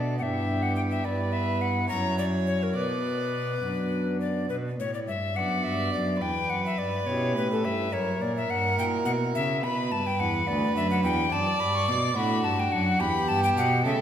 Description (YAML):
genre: classical, baroque-style sonata movement with continuo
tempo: 70 BPM (dotted quarters)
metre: 6/8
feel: straight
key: B minor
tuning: A4 = 440 Hz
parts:
  - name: alto recorder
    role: melody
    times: 0.0-14.0 s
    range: A4 to D6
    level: -29 LUFS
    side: left 5 dB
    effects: none
  - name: warm violin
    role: second line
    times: 0.0-14.0 s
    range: F#4 to D5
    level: -30 LUFS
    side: right 3 dB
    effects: none
  - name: pipe organ, principal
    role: accompaniment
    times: 0.0-14.0 s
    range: D2 to A4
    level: -32 LUFS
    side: equal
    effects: none
  - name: warm cello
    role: bass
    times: 0.0-13.9 s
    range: D2 to C#3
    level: -29 LUFS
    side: right 1 dB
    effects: none
room: wet recital hall reverb, RT60 1.6 s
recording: none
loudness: -24 LUFS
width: side -9 dB against mid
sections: 0.0-4.5 A section; 4.5-14.0 B section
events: none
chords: 0.2 Em7/G; 1.1 Em/G; 1.9 F#5; 2.8 Bm; 6.2 C#dim/E; 7.9 F#7; 9.6 Bm; 11.3 D/F#; 13.0 Em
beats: 0.21 | 1.05 1.91 | 2.77 3.63 | 4.50 5.36 | 6.22 7.08 | 7.93 8.78 | 9.63 10.47 | 11.32 12.16 | 13.00 13.85